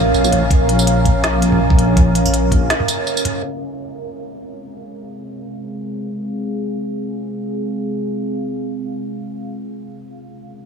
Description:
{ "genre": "half-time drum and bass", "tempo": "free time", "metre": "none", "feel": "none", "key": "F minor", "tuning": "A4 = 440 Hz", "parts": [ { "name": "deep dark ambient pad", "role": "sustained chords", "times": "0.0-10.7 s", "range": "C4 to F5", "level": "-21 LUFS", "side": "right 1 dB", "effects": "chorus, built-in reverb, vintage 12-bit sampler grit, sidechain pumping" }, { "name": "deep soft wobble bass", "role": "bass", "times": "0.0-2.7 s", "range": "Bb1", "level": "-16 LUFS", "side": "left 1 dB", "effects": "chorus" }, { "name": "organic electronic drum kit", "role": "drums", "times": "0.1-3.3 s", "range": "hi-hat, snare drum, tambourine, toms", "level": "-21 LUFS", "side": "right 1 dB", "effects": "none" }, { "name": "electronic kick drum", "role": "drums", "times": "0.5-2.6 s", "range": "none", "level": "-14 LUFS", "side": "equal", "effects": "none" } ], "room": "moderate huge ambient reverb, RT60 6.9 s", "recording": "dreamy mix soaked in reverb, low-pass filter", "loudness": "-15 LUFS", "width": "side -6 dB against mid", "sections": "0.0-3.4 A section; 3.4-10.7 B section", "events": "break 3.1-3.4; filter sweep on ambient pad 3.4-10.7; filter sweep 3.4-10.7", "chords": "0.0 Bbm; 3.4 Fm; 9.3 Bbm" }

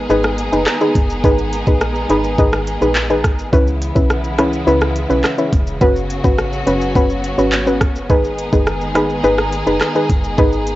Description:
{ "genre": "dancehall", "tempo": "105 BPM", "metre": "4/4", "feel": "straight", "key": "G# minor", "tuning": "A4 = 438 Hz", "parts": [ { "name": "soft round pluck", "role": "accompaniment", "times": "0.0-10.6 s", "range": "C#4 to B4", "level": "-17 LUFS", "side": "equal", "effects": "chorus, cassette tape" }, { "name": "warm studio string section", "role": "sustained chords", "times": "0.0-10.8 s", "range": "C#3 to G#4", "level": "-22 LUFS", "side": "equal", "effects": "sidechain pumping, cassette tape" }, { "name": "woody FM bass", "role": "bass", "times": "0.0-10.8 s", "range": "E1 to C#2", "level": "-22 LUFS", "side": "equal", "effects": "none" }, { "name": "afro-pop drum kit", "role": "drums", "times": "0.1-10.8 s", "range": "handclaps, hi-hat, kick drum, rim click, shaker", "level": "-17 LUFS", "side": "equal", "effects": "cassette tape" } ], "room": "light reverb", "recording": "home recording on cassette, nothing above 7.7 kHz", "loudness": "-13 LUFS", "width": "side -16 dB against mid", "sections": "0.0-10.8 A section", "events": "none", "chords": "0.0 G#m; 3.5 C#m7; 5.8 F#sus4; 8.1 G#m" }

